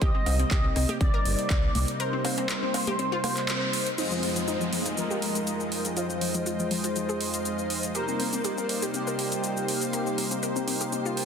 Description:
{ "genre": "progressive house", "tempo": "121 BPM", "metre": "4/4", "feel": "straight", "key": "C minor", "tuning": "A4 = 441 Hz", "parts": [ { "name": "expressive synth lead", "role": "melody", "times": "0.0-11.2 s", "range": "G4 to Eb5", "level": "-32 LUFS", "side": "equal", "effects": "ensemble chorus, sidechain pumping, dub echo" }, { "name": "lush unison pad", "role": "sustained chords", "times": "0.0-11.2 s", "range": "F2 to G5", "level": "-32 LUFS", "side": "equal", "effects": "chorus, sidechain pumping" }, { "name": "analog pluck", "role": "arpeggios", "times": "0.0-11.2 s", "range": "F3 to Bb4", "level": "-34 LUFS", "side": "left 3 dB", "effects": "chorus, sidechain pumping, dub echo" }, { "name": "round analog bass", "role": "bass", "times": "0.0-1.8 s", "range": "G1 to C2", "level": "-27 LUFS", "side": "equal", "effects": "sidechain pumping" }, { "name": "big-room dance drum kit", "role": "drums", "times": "0.0-11.2 s", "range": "crash cymbal, handclaps, hi-hat, rim click, shaker", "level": "-32 LUFS", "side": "equal", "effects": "overdrive, sidechain pumping on hats, small room ambience, sidechain pumping on cymbals, sidechain pumping on perc" }, { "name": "electronic kick drum", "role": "drums", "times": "0.0-1.6 s", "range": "none", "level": "-25 LUFS", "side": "equal", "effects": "overdrive, small room ambience" }, { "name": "cowbell and congas", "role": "percussion", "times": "0.3-3.3 s", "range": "none", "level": "-36 LUFS", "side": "right 1 dB", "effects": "overdrive, sidechain pumping on perc, small room ambience" }, { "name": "soft supersaw", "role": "stabs", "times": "4.0-11.2 s", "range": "Ab3 to Eb5", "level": "-33 LUFS", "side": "left 1 dB", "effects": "phaser, sidechain pumping" }, { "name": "downlifter", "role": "sound effects", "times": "4.0-7.9 s", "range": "none", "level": "-37 LUFS", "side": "right 1 dB", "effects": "none" }, { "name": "backwards swelling texture", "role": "texture", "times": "5.7-11.2 s", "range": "F4 to F5", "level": "-44 LUFS", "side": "left 2 dB", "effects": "none" } ], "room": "moderate lush hall reverb, RT60 2.1 s", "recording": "dense, heavily limited modern master", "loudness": "-25 LUFS", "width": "side -7 dB against mid", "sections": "0.0-4.0 A section; 4.0-11.2 B section", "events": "break 2.0-4.0; band accent 3.5; filter sweep on synth arpeggio sound 4.0-11.2", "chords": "0.0 Cm7; 4.0 Fm7; 7.9 Cm7", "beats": "| 0.01 0.51 1.01 1.50 | 2.00 2.50 2.99 3.49 | 3.98 4.48 4.97 5.47 | 5.97 6.46 6.96 7.45 | 7.95 8.45 8.94 9.44 | 9.93 10.43 10.92" }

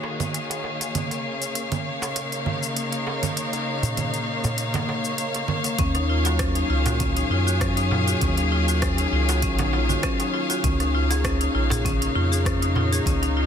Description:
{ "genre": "organic downtempo", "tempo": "99 BPM", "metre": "4/4", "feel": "swing 53% on 16ths", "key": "Eb minor", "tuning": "A4 = 436 Hz", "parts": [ { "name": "rich studio string section", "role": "sustained chords", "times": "0.0-13.5 s", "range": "Db3 to F5", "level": "-26 LUFS", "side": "left 2 dB", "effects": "sidechain pumping, low-pass filter" }, { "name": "darbuka", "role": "percussion", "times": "0.0-13.3 s", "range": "none", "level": "-31 LUFS", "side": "right 1 dB", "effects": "none" }, { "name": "bronze singing bowl", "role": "texture", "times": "0.0-5.8 s", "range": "none", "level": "barely audible", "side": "none", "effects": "none" }, { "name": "organic electronic drum kit", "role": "drums", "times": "0.2-13.3 s", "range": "cabasa, congas, hi-hat, rim click", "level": "-29 LUFS", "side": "right 3 dB", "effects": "studio reverb" }, { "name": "marimba with medium hard mallets", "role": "arpeggios", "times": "5.8-13.5 s", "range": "Db4 to Ab4", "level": "-26 LUFS", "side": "left 1 dB", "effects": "tape echo" }, { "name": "round analog bass", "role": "bass", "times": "5.8-13.5 s", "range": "Bb1 to Gb2", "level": "-24 LUFS", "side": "equal", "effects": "tube saturation, sidechain pumping" }, { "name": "electronic kick drum", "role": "drums", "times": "5.8-13.2 s", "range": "none", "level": "-27 LUFS", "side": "equal", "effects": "overdrive, studio reverb" } ], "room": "light reverb, studio reverb", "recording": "dense, heavily limited modern master, faint mains hum", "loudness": "-21 LUFS", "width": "side -8 dB against mid", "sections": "0.0-5.8 A section; 5.8-13.5 B section", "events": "none", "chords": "0.0 Ebm11; 0.9 Db69; 5.8 Ebm11; 10.6 Db69", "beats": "0.34 | 0.94 1.55 2.16 2.76 | 3.37 3.98 4.58 5.19 | 5.79 6.40 7.01 7.61 | 8.22 8.82 9.43 10.04 | 10.64 11.25 11.85 12.46 | 13.07" }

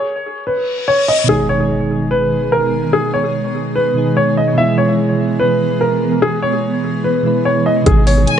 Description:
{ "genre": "hip hop, trap", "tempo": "146 BPM", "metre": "4/4", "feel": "half-time", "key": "G# minor", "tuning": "A4 = 442 Hz", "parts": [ { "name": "dark baby grand piano", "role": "melody", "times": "0.0-8.4 s", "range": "G#4 to E5", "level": "-16 LUFS", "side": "left 1 dB", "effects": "low-pass filter, tape echo" }, { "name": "reverse cymbal and impact", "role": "sound effects", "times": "0.6-2.9 s", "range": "none", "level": "-24 LUFS", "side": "left 2 dB", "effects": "none" }, { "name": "soft electric-piano-like synth keys", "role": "accompaniment", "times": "1.2-8.4 s", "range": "B2 to B4", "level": "-18 LUFS", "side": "right 3 dB", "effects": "chorus, tremolo, low-pass filter, tape echo" }, { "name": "granular cloud pad", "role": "sustained chords", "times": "2.0-8.4 s", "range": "D#3 to G#4", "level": "-20 LUFS", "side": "equal", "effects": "built-in reverb" }, { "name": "warm 808-style bass", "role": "bass", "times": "7.9-8.3 s", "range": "G#1", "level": "-13 LUFS", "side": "equal", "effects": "none" }, { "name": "trap drum kit", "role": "drums", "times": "7.9-8.4 s", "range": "hi-hat, kick drum", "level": "-15 LUFS", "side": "equal", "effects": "overdrive" }, { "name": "warm studio violin section", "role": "second line", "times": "8.3-8.4 s", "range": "G#5", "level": "-16 LUFS", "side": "left 4 dB", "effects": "none" } ], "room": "light reverb, digital ambience", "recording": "echo-heavy mix, nothing above 10.3 kHz", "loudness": "-13 LUFS", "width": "side -9 dB against mid", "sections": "0.0-1.3 A section; 1.3-8.4 B section", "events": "break 0.0-1.3; reverse cymbal 0.6-1.3; impact 1.3-2.9", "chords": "0.0 N.C.; 1.3 G#m; 4.6 E; 7.9 G#m", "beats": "0.06 0.47 0.88 | 1.29 1.70 2.11 2.52 | 2.93 3.34 3.75 4.17 | 4.58 4.99 5.40 5.81 | 6.22 6.63 7.04 7.45 | 7.86 8.27" }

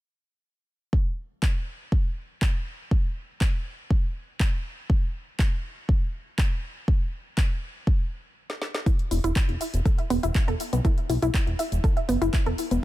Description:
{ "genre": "progressive house", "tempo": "121 BPM", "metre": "4/4", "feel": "straight", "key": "unclear", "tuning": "A4 = 441 Hz", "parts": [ { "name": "electronic kick drum", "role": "drums", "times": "0.9-12.4 s", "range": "none", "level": "-22 LUFS", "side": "equal", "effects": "none" }, { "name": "deep house drum kit", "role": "drums", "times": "1.4-12.8 s", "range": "cabasa, handclaps, hi-hat, snare drum", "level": "-35 LUFS", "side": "equal", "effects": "none" }, { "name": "analog pluck", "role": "arpeggios", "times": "8.9-12.7 s", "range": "B3 to E5", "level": "-27 LUFS", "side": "equal", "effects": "chorus, cassette tape, sidechain pumping, digital delay" }, { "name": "fat analog bass", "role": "bass", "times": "9.1-12.8 s", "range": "E1 to B1", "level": "-26 LUFS", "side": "equal", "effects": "tube saturation, sidechain pumping" } ], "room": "little or no reverb", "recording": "none", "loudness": "-23 LUFS", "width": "side -16 dB against mid", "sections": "0.9-8.9 A section; 8.9-12.8 B section", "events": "stop 8.4-8.9; drum fill 8.5-8.9", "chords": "0.9 N.C.; 8.9 E5", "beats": "| 0.93 1.43 1.92 2.42 | 2.91 3.41 3.90 4.40 | 4.90 5.39 5.89 6.38 | 6.88 7.38 7.87 8.37 | 8.86 9.36 9.86 10.35 | 10.85 11.34 11.84 12.34" }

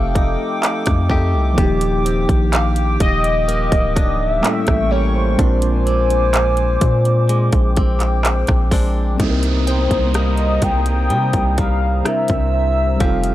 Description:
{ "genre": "contemporary R&B", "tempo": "63 BPM", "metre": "4/4", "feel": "straight", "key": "C minor", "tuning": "A4 = 441 Hz", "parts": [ { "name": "warm velvety synth lead", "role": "melody", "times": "0.0-13.3 s", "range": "C5 to G5", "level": "-21 LUFS", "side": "left 1 dB", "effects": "chorus, tape echo" }, { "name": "mellow tine electric piano", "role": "accompaniment", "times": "0.0-13.3 s", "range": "F3 to Bb4", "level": "-24 LUFS", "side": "equal", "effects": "medium stereo tremolo" }, { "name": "hollow soft pad", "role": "sustained chords", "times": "0.0-13.3 s", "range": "Bb3 to E6", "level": "-26 LUFS", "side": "equal", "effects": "chorus" }, { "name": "direct-recorded clean electric guitar", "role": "arpeggios", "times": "0.0-13.3 s", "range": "A2 to G4", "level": "-25 LUFS", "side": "left 2 dB", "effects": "tape echo" }, { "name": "long sustained 808-style bass", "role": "bass", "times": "0.0-13.3 s", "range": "D1 to C3", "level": "-18 LUFS", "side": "equal", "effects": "none" }, { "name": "trap drum kit", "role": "drums", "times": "0.2-13.3 s", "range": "handclaps, hi-hat, kick drum, rim click", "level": "-18 LUFS", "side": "equal", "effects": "none" }, { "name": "glassy wavetable pluck", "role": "texture", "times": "2.5-3.7, 9.7-10.9 s", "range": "F5 to G5", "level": "-32 LUFS", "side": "equal", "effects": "chorus, tape echo" }, { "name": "downlifter", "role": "sound effects", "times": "9.2-13.3 s", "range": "none", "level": "-30 LUFS", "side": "right 3 dB", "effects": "none" } ], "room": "little or no reverb", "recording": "dry, gritty hardware recording, transformer saturation", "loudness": "-14 LUFS", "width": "side -14 dB against mid", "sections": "0.0-9.2 A section; 9.2-13.3 B section", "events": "none", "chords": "0.0 F9; 1.6 Ebmaj7; 4.4 A7b9; 5.4 Bb9; 9.2 Cm7; 12.1 C7", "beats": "0.62 | 1.58 2.53 3.48 4.43 | 5.39 6.34 7.29 8.24 | 9.20 10.15 11.10 12.05 | 13.01" }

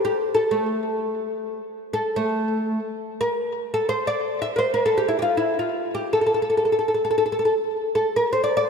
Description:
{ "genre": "persian", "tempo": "free time", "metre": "none", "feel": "none", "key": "A dastgah shur", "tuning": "A4 = 439 Hz", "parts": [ { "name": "oud", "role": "solo", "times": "0.0-8.7 s", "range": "A3 to E5", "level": "-20 LUFS", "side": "equal", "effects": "ping-pong delay" } ], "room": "wet plate reverb, RT60 3.4 s", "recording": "dreamy mix soaked in reverb", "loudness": "-20 LUFS", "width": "side -6 dB against mid", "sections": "0.0-3.0 A section; 3.0-8.7 A section", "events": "none", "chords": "none", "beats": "free time" }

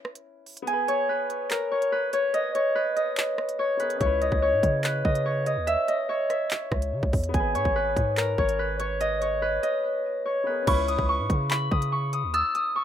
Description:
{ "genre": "hip hop, drill", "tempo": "144 BPM", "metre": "4/4", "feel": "half-time", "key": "unclear", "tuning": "A4 = 440 Hz", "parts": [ { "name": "clear concert grand piano", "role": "accompaniment", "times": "0.0-12.8 s", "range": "B3 to B4", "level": "-39 LUFS", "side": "left 3 dB", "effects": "low-pass filter, plate reverb" }, { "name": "drill drum kit", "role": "drums", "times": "0.0-12.6 s", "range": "crash cymbal, handclaps, hi-hat, kick drum, rim click", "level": "-28 LUFS", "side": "right 1 dB", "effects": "none" }, { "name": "Celtic harp", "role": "melody", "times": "0.7-12.8 s", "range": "A#4 to E6", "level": "-24 LUFS", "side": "equal", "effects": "low-pass filter, plate reverb, digital delay" }, { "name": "long sustained 808-style bass", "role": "bass", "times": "4.0-12.4 s", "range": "G#1 to C#3", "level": "-29 LUFS", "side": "right 1 dB", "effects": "none" }, { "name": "dark detuned synth bell", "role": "second line", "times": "10.7-12.8 s", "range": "B5 to D#6", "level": "-32 LUFS", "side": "right 2 dB", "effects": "chorus, plate reverb" } ], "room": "moderate small room reverb, RT60 0.5 s", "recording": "rough home demo mix", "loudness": "-23 LUFS", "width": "side -10 dB against mid", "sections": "0.0-10.7 A section; 10.7-12.8 B section", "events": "break 0.0-4.0", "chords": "0.0 C#m7; 0.7 G#m; 4.0 C#m7; 7.3 G#m; 10.7 C#m7", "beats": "0.26 | 0.67 1.09 1.51 1.92 | 2.34 2.76 3.17 3.59 | 4.01 4.42 4.84 5.26 | 5.67 6.09 6.51 6.92 | 7.34 7.76 8.17 8.59 | 9.01 9.42 9.84 10.26 | 10.67 11.09 11.51 11.92 | 12.34 12.76" }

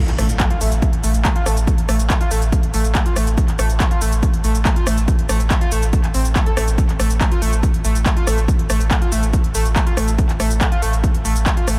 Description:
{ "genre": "driving peak-time techno", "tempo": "141 BPM", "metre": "4/4", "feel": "straight", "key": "unclear", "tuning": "A4 = 440 Hz", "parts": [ { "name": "impact", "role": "sound effects", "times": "0.0-1.7 s", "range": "none", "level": "-31 LUFS", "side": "equal", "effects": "none" }, { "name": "saturated sub bass", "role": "bass", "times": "0.1-11.8 s", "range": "A1", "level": "-21 LUFS", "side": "equal", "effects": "tube saturation, sidechain pumping, low-pass filter" }, { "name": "techno drum kit", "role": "drums", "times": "0.1-11.8 s", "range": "handclaps, hi-hat, rim click, shaker", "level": "-27 LUFS", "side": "equal", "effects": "overdrive, sidechain pumping on hats, studio reverb, sidechain pumping on cymbals, sidechain pumping on perc" }, { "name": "overdriven synth lead", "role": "riff", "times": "0.2-11.8 s", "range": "A3 to A4", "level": "-27 LUFS", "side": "equal", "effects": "distortion, subtle chorus, sidechain pumping, analog delay" }, { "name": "electronic kick drum", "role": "drums", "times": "0.4-11.5 s", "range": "none", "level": "-21 LUFS", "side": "equal", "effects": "overdrive, studio reverb" } ], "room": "light reverb", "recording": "none", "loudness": "-18 LUFS", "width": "mono", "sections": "0.0-11.8 A section", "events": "impact 0.0-1.7", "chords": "none", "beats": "0.40 0.82 1.25 | 1.67 2.10 2.52 2.95 | 3.38 3.80 4.23 4.65 | 5.08 5.50 5.93 6.36 | 6.78 7.21 7.63 8.06 | 8.48 8.91 9.33 9.76 | 10.19 10.61 11.04 11.46" }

